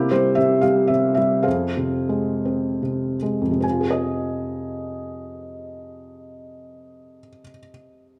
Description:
classical, lyrical solo piano; 68-119 BPM; 3/4; rubato; F minor; A4 = 442 Hz
felt-muted upright piano; solo; 0.0-8.2 s; F2 to Ab5; -23 LUFS; equal
moderate recital hall reverb, RT60 1.4 s; dark, warm production; -22 LUFS; mono
0.0-3.6 A section; 3.6-8.2 B section
slowing down 0.0-3.6
0.0 C7; 1.5 Fm; 3.6 Fm7

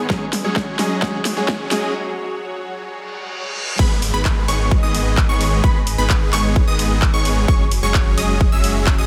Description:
EDM, festival progressive house; 130 BPM; 4/4; straight; G# minor; A4 = 441 Hz
lush unison pad; sustained chords; 0.0-9.1 s; F#3 to D#5; -32 LUFS; equal; chorus, phaser, sidechain pumping
supersaw chords; riff; 0.0-9.1 s; D#3 to E5; -26 LUFS; equal; sidechain pumping, low-pass filter, tape echo
riser, reverse cymbal and downlifter; sound effects; 1.3-7.5 s; -34 LUFS; equal
fingerpicked steel-string acoustic guitar; accompaniment; 0.1-1.9 s; F#3 to G#4; -28 LUFS; equal; sidechain pumping, tape echo
big-room dance drum kit; drums; 0.1-9.0 s; crash cymbal, handclaps, hi-hat, ride cymbal, snare drum; -27 LUFS; equal; overdrive, studio reverb
electronic kick drum; drums; 0.1-9.0 s; -20 LUFS; equal; overdrive, studio reverb
unison pluck; arpeggios; 3.8-9.1 s; B5 to E6; -27 LUFS; equal; phaser, sidechain pumping, tape echo
saturated sub bass; bass; 3.8-9.1 s; F#1 to G#1; -24 LUFS; equal; tube saturation, sidechain pumping
light reverb, digital ambience; high-pass filter; -18 LUFS; mono
0.0-3.8 A section; 3.8-9.1 B section
build-up 0.0-3.8; drum fill 0.0-1.9; filter sweep 0.0-3.8; break 1.9-3.8; riser 2.3-3.8; reverse cymbal 2.9-3.8; drop 3.8-9.1
0.1 F#sus2; 3.8 G#m; 7.5 F#sus2

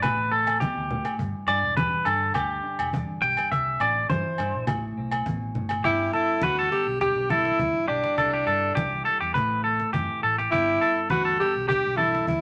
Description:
highlife guitar band; 103 BPM; 4/4; straight; G major; A4 = 442 Hz
semi-hollow electric guitar; accompaniment; 0.0-12.4 s; G2 to G4; -39 LUFS; equal
twangy electric guitar; arpeggios; 0.0-12.3 s; G4 to G5; -27 LUFS; equal
vintage muted fingered electric bass; bass; 0.0-12.4 s; E1 to G2; -36 LUFS; equal
cajon; drums; 0.0-12.4 s; -37 LUFS; equal
agogo bells; percussion; 0.0-5.8 s; -34 LUFS; equal
congas; percussion; 0.0-12.4 s; -35 LUFS; equal
breathy alto saxophone; melody; 5.9-12.4 s; D4 to G4; -26 LUFS; equal
moderate studio reverb, RT60 0.9 s; -25 LUFS; mono
0.0-5.8 A section; 5.8-12.4 B section
clean electric guitar solo 0.0-5.8
0.0 Am; 1.2 G; 3.5 Cadd9; 4.7 Am; 5.8 G; 8.2 Cadd9; 9.3 Am; 10.5 G

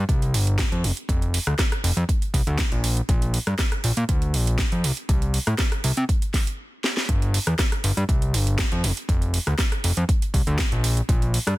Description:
nu-disco, nu disco; 120 BPM; 4/4; straight; A4 = 440 Hz
fat analog bass; bass; 0.0-11.5 s; F1 to C3; -22 LUFS; equal; sidechain pumping
electronic kick drum; drums; 0.1-11.2 s; -23 LUFS; equal
house drum kit; drums; 0.1-11.6 s; hi-hat, rim click, snare drum; -27 LUFS; right 1 dB
little or no reverb; dense, heavily limited modern master; -20 LUFS; side -18 dB against mid
0.0-7.1 A section; 7.1-11.6 B section
stop 6.6-7.1; drum fill 6.8; drop 7.1-11.6

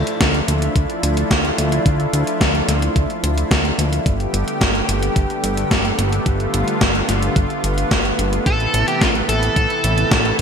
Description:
synthwave; 109 BPM; 4/4; straight; D dorian; A4 = 438 Hz
lush unison pad; sustained chords; 0.0-10.4 s; C3 to G4; -22 LUFS; equal; chorus, sidechain pumping
fat analog bass; bass; 0.0-10.4 s; G1 to D2; -20 LUFS; equal; sidechain pumping
gated 80s digital drum machine; drums; 0.1-10.4 s; hi-hat, snare drum; -21 LUFS; equal; gated reverb, gated reverb snare, overdrive
electronic kick drum; drums; 0.2-10.2 s; -19 LUFS; equal; overdrive
dark smooth lead guitar; melody; 8.5-10.3 s; F4 to A4; -19 LUFS; equal; overdrive, ping-pong delay
moderate lush hall reverb, RT60 1.9 s, digital ambience; bright 1980s-style digital production; -15 LUFS; side -6 dB against mid
0.0-10.4 A section
0.0 Dmadd9; 4.1 Gadd9; 8.5 Amadd9

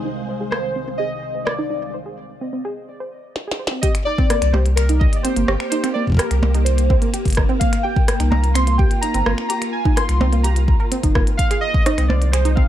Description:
IDM; 127 BPM; 4/4; straight; C minor; A4 = 441 Hz
soft string machine; sustained chords; 0.0-12.7 s; C2 to C5; -28 LUFS; left 1 dB; ensemble chorus, vintage 12-bit sampler grit
bubbling stepped-filter texture; texture; 0.0-1.9 s; F5; -42 LUFS; right 5 dB; chorus, built-in reverb, sidechain pumping
warbly dusty pluck; arpeggios; 0.1-12.6 s; Bb3 to C5; -25 LUFS; right 3 dB; chorus, digital delay
warbly lo-fi synth keys; melody; 0.5-12.7 s; Bb4 to C6; -25 LUFS; right 1 dB; chorus, phaser, dub echo
glitchy drum kit; drums; 0.5-12.5 s; finger snaps, hi-hat, percussion blips, rim click, snare drum; -24 LUFS; right 1 dB; small room ambience
electronic kick drum; drums; 3.8-12.7 s; -17 LUFS; equal; small room ambience
warm sub bass; bass; 4.4-12.6 s; G1 to C2; -17 LUFS; equal
little or no reverb; -16 LUFS; side -12 dB against mid
0.0-3.8 A section; 3.8-12.7 B section
filter sweep on synth pluck 0.0-3.8; break 1.9-3.8; drum fill 3.4-3.8
0.0 Ab/C; 3.8 C7(no3); 11.4 Ab

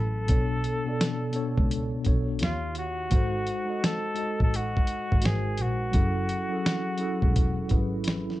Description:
lo-fi hip hop; 85 BPM; 4/4; swing 63% on 16ths; A4 = 440 Hz
clear flugelhorn; melody; 0.0-8.1 s; E#4 to A4; -32 LUFS; left 1 dB; low-pass filter, plate reverb
mellow tine electric piano; accompaniment; 0.0-8.4 s; B2 to D#5; -30 LUFS; equal; medium stereo tremolo, cassette tape, low-pass filter
dark double bass; bass; 0.0-8.2 s; E1 to D#2; -30 LUFS; equal
dusty soul sampler-style drum kit; drums; 0.3-8.4 s; finger snaps, hi-hat, kick drum, snare drum; -25 LUFS; equal; overdrive, vintage 12-bit sampler grit
moderate small room reverb, RT60 0.5 s; cassette tape; -24 LUFS; side -16 dB against mid
0.0-8.4 A section
0.3 Bm7; 2.4 D#7; 3.1 G#7b9; 5.2 G#9; 5.9 F#m7

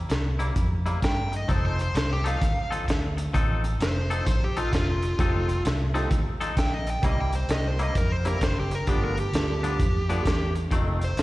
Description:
electric blues shuffle; 130 BPM; 4/4; swing 65% on 8ths; A4 = 439 Hz
vintage muted fingered electric bass; bass; 0.0-11.2 s; F1 to G2; -27 LUFS; equal
twangy electric guitar; riff; 0.1-11.2 s; F2 to A4; -32 LUFS; left 2 dB; slapback echo
crunchy breakbeat drum kit; drums; 0.1-11.2 s; hi-hat, kick drum, snare drum; -27 LUFS; equal
dark smooth lead guitar; melody; 1.0-11.2 s; F4 to G5; -31 LUFS; equal; overdrive, slapback echo
warm baby grand piano; accompaniment; 5.2-10.2 s; A3 to A4; -36 LUFS; right 3 dB; slapback echo
small room ambience; live gig heard through the venue's PA, recital hall reverb; -23 LUFS; side -18 dB against mid
0.0-11.2 A section
0.0 C7; 1.5 F7; 7.0 C7; 8.9 G7; 10.7 F7

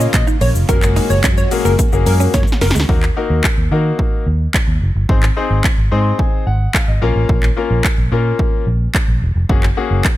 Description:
dance-pop; 109 BPM; 4/4; straight; Eb dorian; A4 = 439 Hz
plucky unison lead; melody; 0.0-2.7 s; Bb4 to Eb5; -22 LUFS; equal; digital delay
clear concert grand piano; accompaniment; 0.0-10.0 s; Bb3 to Eb6; -20 LUFS; left 5 dB; sidechain pumping
soft supersaw; sustained chords; 0.0-2.9 s; Bb2 to Gb4; -25 LUFS; left 1 dB; sidechain pumping
direct-recorded clean electric guitar; riff; 0.0-2.8 s; Ab3 to Gb4; -25 LUFS; right 4 dB; wide subtle chorus
vintage muted fingered electric bass; bass; 0.0-10.0 s; Fb1 to Eb3; -16 LUFS; equal; sidechain pumping
house drum kit; drums; 0.0-10.2 s; handclaps, hi-hat, kick drum, shaker, snare drum; -16 LUFS; equal
digital ambience; -13 LUFS; side -15 dB against mid
0.0-2.9 A section; 2.9-10.2 B section
drop 0.0-2.9; drum fill 2.3-2.9; grand piano fill 5.6-7.3
0.0 Bbm; 0.7 Gbadd9; 2.9 Ebm; 5.1 Ab; 7.0 Bbm; 9.5 Gbadd9

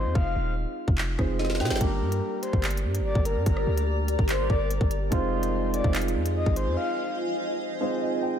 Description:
hip hop, drill; 145 BPM; 4/4; half-time; A4 = 437 Hz
breathy flute-like synth lead; second line; 0.0-7.2 s; Bb4 to F5; -33 LUFS; left 3 dB; chorus, analog delay
dark baby grand piano; accompaniment; 0.0-8.4 s; G3 to G5; -31 LUFS; right 3 dB; wide subtle chorus, low-pass filter
hard-hitting 808-style bass; bass; 0.0-6.8 s; Eb1 to C3; -28 LUFS; equal
drill drum kit; drums; 0.2-6.7 s; handclaps, hi-hat, kick drum, rim click, snare drum; -26 LUFS; equal
granular cloud pad; sustained chords; 2.5-8.4 s; F4 to Bb5; -31 LUFS; equal; built-in reverb, wide subtle chorus
light reverb; -24 LUFS; side -9 dB against mid
0.0-8.4 A section
break 0.0-1.8, 6.8-8.4; drum fill 1.4-1.8
0.0 Fm7; 1.8 Gm; 5.1 Fm7

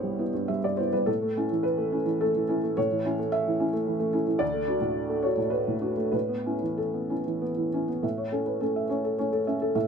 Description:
neoclassical minimalist piano; 92-112 BPM; 3/4; rubato; A major; A4 = 440 Hz
felt-muted upright piano; solo; 0.0-9.9 s; C2 to E5; -25 LUFS; equal
moderate studio reverb, RT60 0.6 s; -25 LUFS; side -6 dB against mid
0.0-8.0 A section; 8.0-9.9 B section
0.0 Cmaj7; 1.1 A; 4.4 D; 6.1 Aadd9

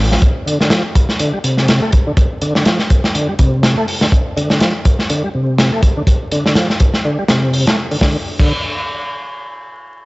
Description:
breakbeat, breaks; 123 BPM; 4/4; swing 56% on 16ths; D minor; A4 = 443 Hz
overdriven tonewheel organ; riff; 0.1-8.5 s; C3 to A3; -18 LUFS; equal; chorus vibrato, fast rotary speaker, tube saturation, low-pass filter, analog delay
crunchy breakbeat drum kit; drums; 0.1-8.5 s; crash cymbal, hi-hat, kick drum, snare drum; -14 LUFS; equal
light reverb; dry, gritty hardware recording, vinyl crackle, nothing above 7.9 kHz; -12 LUFS; side -22 dB against mid
0.0-8.0 A section; 8.0-10.1 B section

